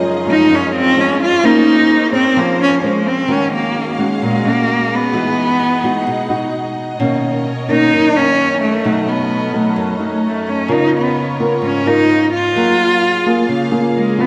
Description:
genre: bossa nova.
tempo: 130 BPM.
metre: 4/4.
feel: straight.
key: Bb minor, Eb minor from 3.3 s.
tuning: A4 = 444 Hz.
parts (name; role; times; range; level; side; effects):
nylon-string guitar; accompaniment; 0.0-14.3 s; Gb2 to C5; -20 LUFS; equal; none.
rich studio string section; sustained chords; 0.0-14.3 s; Bb3 to F#5; -26 LUFS; equal; none.
rich cello; melody; 0.3-14.3 s; Ab3 to F4; -17 LUFS; equal; none.
room: wet concert hall reverb, RT60 2.1 s.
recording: recorded in a church or concert hall.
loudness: -15 LUFS.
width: mono.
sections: 0.0-3.3 A section; 3.3-14.3 B section.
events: cello solo 0.0-3.3.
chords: 0.0 Ebm11/Gb; 1.4 Bbm9; 3.3 Ebm11; 5.1 Emaj9; 7.0 Bmaj9; 8.8 B7; 10.7 Db13; 12.6 Gbmaj9.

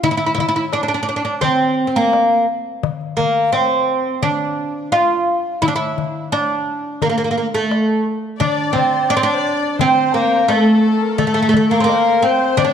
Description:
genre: Arabic maqam ensemble.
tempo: 86 BPM.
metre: 4/4.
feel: straight.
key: unclear.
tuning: A4 = 437 Hz.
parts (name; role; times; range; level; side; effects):
oud; melody; 0.0-12.7 s; A3 to F4; -15 LUFS; right 1 dB; none.
darbuka; percussion; 0.0-12.7 s; none; -25 LUFS; left 10 dB; none.
musette accordion; second line; 8.4-12.7 s; A4 to D5; -26 LUFS; left 9 dB; none.
warm symphonic violin section; second line; 8.4-12.7 s; A4 to D5; -22 LUFS; left 9 dB; none.
room: moderate echo chamber reverb, RT60 1.7 s, studio reverb.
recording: 1960s-style stereo.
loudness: -14 LUFS.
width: side -8 dB against mid.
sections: 0.0-8.4 A section; 8.4-12.7 B section.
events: none.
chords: none.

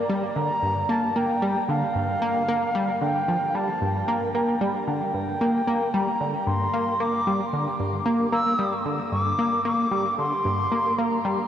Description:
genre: ambient.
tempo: 113 BPM.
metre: 4/4.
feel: straight.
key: G dorian.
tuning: A4 = 440 Hz.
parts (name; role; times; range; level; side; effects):
wooden flute; melody; 0.0-11.5 s; D5 to E6; -25 LUFS; equal; shimmer reverb, analog delay.
tight sequenced synth; riff; 0.0-11.4 s; G2 to Bb3; -24 LUFS; equal; chorus, shimmer reverb, analog delay.
room: wet huge ambient reverb, RT60 8.0 s.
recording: worn, warbling old tape, cassette tape, warbly pitch drift.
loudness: -22 LUFS.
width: side -10 dB against mid.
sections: 0.0-11.5 A section.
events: none.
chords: 0.0 Gm.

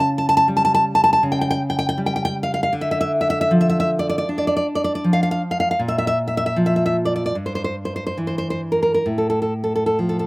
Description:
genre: romantic piece for solo classical guitar.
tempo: 64-80 BPM.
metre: 4/4.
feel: rubato.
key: D minor.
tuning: A4 = 440 Hz.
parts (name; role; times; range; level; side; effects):
nylon-string guitar; solo; 0.0-10.3 s; G2 to A5; -17 LUFS; equal; none.
room: little or no reverb.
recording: recorded outdoors, with no room sound.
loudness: -17 LUFS.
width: side -23 dB against mid.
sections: 0.0-10.3 A section.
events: none.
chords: 0.0 A7/C#; 2.7 Dm; 5.8 Bb5; 7.3 Gmadd11; 9.1 F/A.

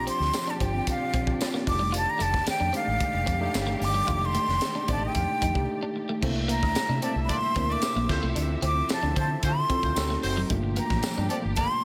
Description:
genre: polished 1980s jazz-funk pop.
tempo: 112 BPM.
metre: 4/4.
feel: straight.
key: unclear.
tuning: A4 = 442 Hz.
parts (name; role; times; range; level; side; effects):
breathy jazz flute; melody; 0.0-11.8 s; F5 to D6; -31 LUFS; equal; tape echo.
tine electric piano; accompaniment; 0.0-11.8 s; Ab3 to Bb4; -35 LUFS; equal; lush chorus.
warm symphonic string section; sustained chords; 0.0-11.8 s; Bb2 to E5; -39 LUFS; equal; none.
vintage muted fingered electric bass; bass; 0.0-11.6 s; F1 to D3; -32 LUFS; equal; none.
clean electric guitar; riff; 0.1-11.4 s; F#3 to F4; -38 LUFS; equal; lush chorus.
crisp fusion drum kit; drums; 0.1-11.7 s; crash cymbal, hi-hat, kick drum, snare drum; -34 LUFS; equal; gated reverb.
tambourine; percussion; 0.3-11.2 s; none; -43 LUFS; equal; none.
warm horn section; second line; 4.9-11.7 s; A3 to D5; -38 LUFS; equal; none.
room: light reverb, small room ambience.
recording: none.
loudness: -26 LUFS.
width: mono.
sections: 0.0-6.2 A section; 6.2-11.8 B section.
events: band accent 4.1-6.2; break 5.7-6.2.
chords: 0.0 Bb6; 1.7 F13; 6.2 C13; 8.1 Dm9; 10.0 D7b9; 10.5 Gm9.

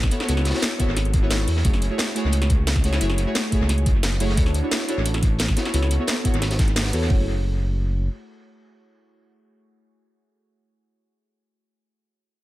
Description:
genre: liquid drum and bass.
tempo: 176 BPM.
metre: 4/4.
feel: straight.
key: F# minor.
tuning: A4 = 439 Hz.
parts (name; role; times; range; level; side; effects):
deep mellow chord stab; accompaniment; 0.0-12.3 s; A3 to C#5; -27 LUFS; equal; chorus, cassette tape, dub echo.
smooth synth bass; bass; 0.0-8.1 s; F#1 to E2; -22 LUFS; equal; none.
crunchy breakbeat drum kit; drums; 0.0-7.1 s; hi-hat, snare drum; -33 LUFS; equal; high-pass filter on hats, high-pass filter on snare, high-pass filter on room, dub echo.
drum and bass drum kit; drums; 0.0-7.0 s; hi-hat, snare drum; -27 LUFS; equal; dub echo.
electronic kick drum; drums; 0.0-7.2 s; none; -20 LUFS; equal; none.
room: little or no reverb.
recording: echo-heavy mix.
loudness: -19 LUFS.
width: side -16 dB against mid.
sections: 0.0-7.1 A section; 7.1-9.8 B section.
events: drop 0.0-7.1.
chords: 0.1 A69/C#; 1.6 F#m9; 4.4 Dmaj9; 5.6 A69/C#; 7.1 F#m9.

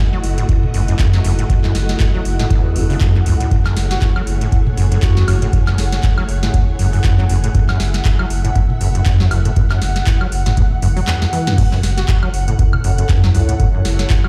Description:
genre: acid house.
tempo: 119 BPM.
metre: 4/4.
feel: swing 57% on 16ths.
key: unclear.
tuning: A4 = 440 Hz.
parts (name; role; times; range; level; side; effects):
string machine, full ensemble; sustained chords; 0.0-11.6 s; A3 to E5; -30 LUFS; equal; ensemble chorus, sidechain pumping.
ethereal airy pad; texture; 0.1-14.3 s; E4 to F#5; -31 LUFS; equal; ensemble chorus, built-in reverb, sidechain pumping.
acid bass, saw; riff; 0.1-14.3 s; E2 to F#3; -22 LUFS; equal; overdrive, analog chorus, sidechain pumping.
round analog bass; bass; 0.2-14.1 s; F#1 to F#2; -19 LUFS; equal; sidechain pumping.
booming analog drum machine; drums; 0.2-14.3 s; crash cymbal, handclaps, hi-hat, snare drum, toms, woodblock; -25 LUFS; equal; none.
electronic kick drum; drums; 0.5-14.2 s; none; -18 LUFS; equal; none.
trumpet with bucket mute; melody; 3.9-5.4, 12.0-12.2 s; F#4; -32 LUFS; equal; tape echo.
room: light reverb.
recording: played on a big sound system in a bare room, stone room reverb.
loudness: -15 LUFS.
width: mono.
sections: 0.0-11.6 A section; 11.6-14.3 B section.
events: drum fill 11.1-11.6; drop 11.6-14.3.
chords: 0.0 F#m7.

